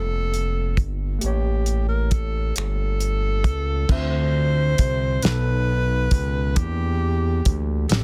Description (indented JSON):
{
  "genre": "slow six-eight R&B",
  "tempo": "45 BPM (dotted quarters)",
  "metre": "6/8",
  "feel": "straight",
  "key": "D minor",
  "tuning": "A4 = 440 Hz",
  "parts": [
    { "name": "breathy tenor saxophone", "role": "melody", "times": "0.0-8.0 s", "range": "G4 to C5", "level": "-30 LUFS", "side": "equal", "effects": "none" },
    { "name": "tine electric piano", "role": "accompaniment", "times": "0.0-8.0 s", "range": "A2 to E5", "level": "-32 LUFS", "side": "equal", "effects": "overdrive" },
    { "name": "smooth synth bass", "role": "bass", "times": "0.0-8.0 s", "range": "F1 to E2", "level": "-25 LUFS", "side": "equal", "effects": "none" },
    { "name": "damped 70s drum kit", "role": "drums", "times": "0.3-8.0 s", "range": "crash cymbal, finger snaps, hi-hat, kick drum, snare drum", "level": "-24 LUFS", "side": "equal", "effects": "soft clipping on snare" }
  ],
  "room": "little or no reverb",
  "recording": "dense, heavily limited modern master",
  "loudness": "-22 LUFS",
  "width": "mono",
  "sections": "0.0-3.9 A section; 3.9-8.0 B section",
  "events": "none",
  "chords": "0.0 Gm9; 1.2 A7b9; 3.9 Dm9; 5.2 B7; 6.6 Em7b5",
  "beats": "| 1.23 2.56 | 3.89 5.23 | 6.56 7.89"
}